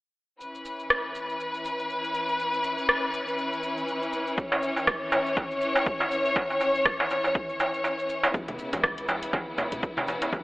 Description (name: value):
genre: afro house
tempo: 121 BPM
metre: 4/4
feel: swing 57% on 16ths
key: C# minor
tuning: A4 = 436 Hz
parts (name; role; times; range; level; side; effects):
- warm studio string section; sustained chords; 0.4-10.4 s; C#3 to C#5; -28 LUFS; left 1 dB; sidechain pumping, low-pass filter
- afro-pop drum kit; drums; 0.4-10.4 s; cabasa, hi-hat, rim click, toms; -27 LUFS; equal; none
- electronic kick drum; drums; 4.4-10.4 s; none; -31 LUFS; equal; overdrive
- darbuka; percussion; 4.5-10.4 s; none; -27 LUFS; right 1 dB; none
- warm 808-style bass; bass; 8.3-10.4 s; C#2; -40 LUFS; equal; sidechain pumping
- congas; percussion; 8.3-10.4 s; none; -39 LUFS; left 1 dB; none
room: wet recital hall reverb, RT60 1.6 s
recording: telephone sound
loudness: -25 LUFS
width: side -20 dB against mid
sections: 0.4-8.3 A section; 8.3-10.4 B section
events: kick drops out 7.8-8.3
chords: 0.4 C#m7